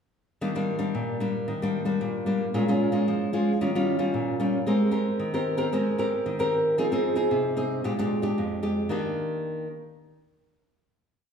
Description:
samba; 113 BPM; 4/4; straight; Eb major; A4 = 443 Hz
nylon-string guitar; solo; 0.4-9.7 s; F2 to Bb4; -24 LUFS; equal
wet large studio reverb, RT60 1.3 s; band playing live in one room; -24 LUFS; side -6 dB against mid
0.4-8.9 A section; 8.9-11.0 final chord
0.4 Ebmaj7; 2.5 Bbm7; 3.6 Eb9; 4.7 Abmaj9; 6.8 Fm7; 7.8 Bb6; 8.9 Ebmaj7

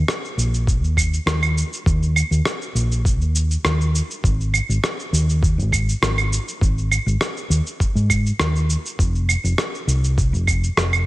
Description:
sunset chillout; 101 BPM; 4/4; straight; Ab major; A4 = 440 Hz
hollow-body short-scale fingered electric bass; bass; 0.0-11.1 s; F1 to Ab2; -19 LUFS; equal
electronic rim click, shaker and claves; drums; 0.1-11.0 s; -23 LUFS; right 1 dB
electronic kick drum; drums; 0.7-10.6 s; -20 LUFS; equal
little or no reverb; -17 LUFS; side -18 dB against mid
0.0-11.1 A section

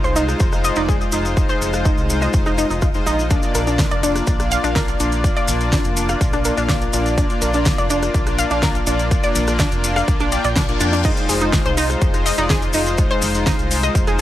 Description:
progressive house; 124 BPM; 4/4; straight; A4 = 440 Hz
analog pluck; arpeggios; 0.0-14.2 s; D4 to F5; -23 LUFS; equal; chorus, sidechain pumping, tape echo
soft supersaw; stabs; 0.0-14.2 s; Ab3 to G5; -21 LUFS; left 2 dB; sidechain pumping, tape echo
round analog bass; bass; 0.0-14.2 s; F1 to F2; -24 LUFS; equal; sidechain pumping
maracas; percussion; 0.0-14.2 s; -29 LUFS; left 2 dB
deep house drum kit; drums; 0.3-14.2 s; crash cymbal, hi-hat, rim click, snare drum; -25 LUFS; equal; overdrive, sidechain pumping on hats, sidechain pumping on cymbals
electronic kick drum; drums; 0.4-14.1 s; -19 LUFS; equal; overdrive
reverse cymbal; sound effects; 10.5-11.0 s; -33 LUFS; left 6 dB
light reverb; -16 LUFS; side -13 dB against mid
0.0-14.2 A section
filter sweep on synth pluck 0.0-14.2; reverse cymbal 10.5-11.0
0.0 Fm7; 3.3 Bb; 11.0 Fm7

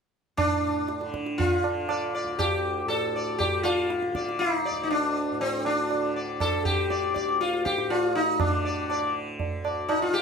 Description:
indian classical, Hindustani; 120 BPM; 4/4; straight; D raga bhairavi; A4 = 440 Hz
sitar; melody; 0.4-10.2 s; C4 to D5; -25 LUFS; left 2 dB
tanpura; drone; 0.4-10.2 s; D2 to D3; -35 LUFS; equal
tabla; percussion; 0.4-10.1 s; -30 LUFS; right 4 dB
moderate studio reverb, RT60 0.5 s; -24 LUFS; side -6 dB against mid
0.4-10.2 A section

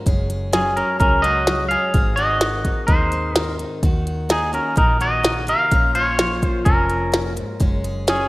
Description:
honky-tonk and classic country; 127 BPM; 4/4; straight; A4 = 440 Hz
picked steel-string acoustic guitar; accompaniment; 0.0-8.3 s; F2 to Ab4; -27 LUFS; left 1 dB
vintage muted fingered electric bass; bass; 0.1-8.3 s; F1 to Eb2; -25 LUFS; equal
glitchy drum kit; drums; 0.1-8.2 s; hi-hat, kick drum, snare drum; -20 LUFS; equal
twangy electric guitar; melody; 0.5-8.3 s; Db4 to F5; -19 LUFS; equal; spring reverb
moderate lush hall reverb, RT60 1.8 s; rough home demo mix; -16 LUFS; side -20 dB against mid
0.0-8.3 A section
0.1 Gbsus2; 1.9 Ab; 3.8 Ebm; 5.7 Bbm; 7.6 Gbsus2

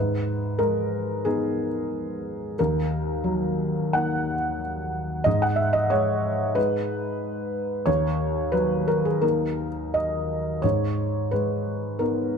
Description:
neoclassical minimalist piano; 90 BPM; 4/4; rubato; G# minor; A4 = 441 Hz
felt-muted upright piano; solo; 0.0-12.4 s; D#2 to F#5; -23 LUFS; equal
light reverb; close, detailed microphones; -23 LUFS; side -6 dB against mid
0.0-12.4 A section
0.0 G#m; 2.6 D#m; 5.3 G#m; 7.9 D#m; 10.6 G#m

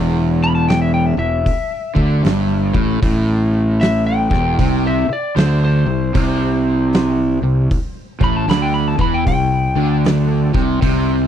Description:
blues rock power trio and southern rock; 77 BPM; 4/4; swing 64% on 8ths; A4 = 439 Hz
overdriven semi-hollow guitar; riff; 0.0-11.3 s; E2 to E3; -17 LUFS; equal
fuzz fingered electric bass; bass; 0.0-11.3 s; E1 to E2; -19 LUFS; equal; overdrive
lightly driven lead guitar; melody; 0.4-10.8 s; C5 to B5; -22 LUFS; left 3 dB; tape echo
oversized low-tuned drum kit; drums; 0.7-11.1 s; hi-hat, kick drum, snare drum; -20 LUFS; equal
little or no reverb; dry, close 1970s-style studio recording; -14 LUFS; side -9 dB against mid
0.0-11.3 A section
lead electric guitar solo 0.0-11.3
0.0 Em; 4.6 C5

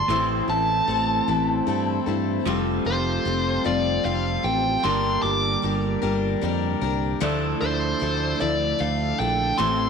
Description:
folk rock and heartland rock; 50 BPM (dotted quarters); 6/8; straight; D minor; A4 = 440 Hz
dark smooth lead guitar; melody; 0.0-9.9 s; C5 to D6; -24 LUFS; equal; overdrive, slapback echo
picked steel-string acoustic guitar; accompaniment; 0.0-9.9 s; A2 to Bb4; -28 LUFS; left 10 dB
pedal harmonium; sustained chords; 0.0-9.9 s; C4 to D5; -32 LUFS; left 8 dB
electric guitar through a small old amp; riff; 0.0-9.9 s; G2 to G4; -28 LUFS; right 13 dB
fingered electric bass; bass; 0.1-9.9 s; F1 to G2; -28 LUFS; equal
moderate echo chamber reverb, RT60 1.9 s; 1960s-style stereo with parts hard left and right; -21 LUFS; side -6 dB against mid
0.0-9.9 A section
lead electric guitar solo 0.0-9.9
0.1 Am; 2.5 Fadd9; 4.8 Gm; 7.2 Dmadd9

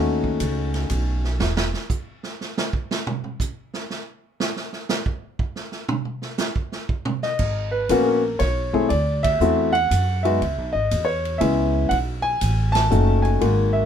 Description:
jazz piano trio; 120 BPM; 3/4; swing 68% on 8ths; A4 = 437 Hz
warm grand piano; melody; 0.0-1.3, 7.2-13.9 s; D#3 to A5; -21 LUFS; left 2 dB
upright bass; bass; 0.0-1.7, 7.4-13.9 s; E1 to F#2; -22 LUFS; right 1 dB
swinging big-band drum kit; drums; 0.2-13.6 s; crash cymbal, hi-hat, kick drum, ride cymbal, snare drum, toms; -27 LUFS; right 3 dB
light reverb; minimal, uncompressed stereo recording; -20 LUFS; side -8 dB against mid
0.0-7.4 A section; 7.4-13.9 B section
grand piano solo 0.0-7.4; drum solo 1.4-7.4; band accent 9.2, 12.7
0.0 B9; 1.4 N.C.; 7.4 G#m11; 8.9 D9; 10.4 C#m7; 11.9 B9

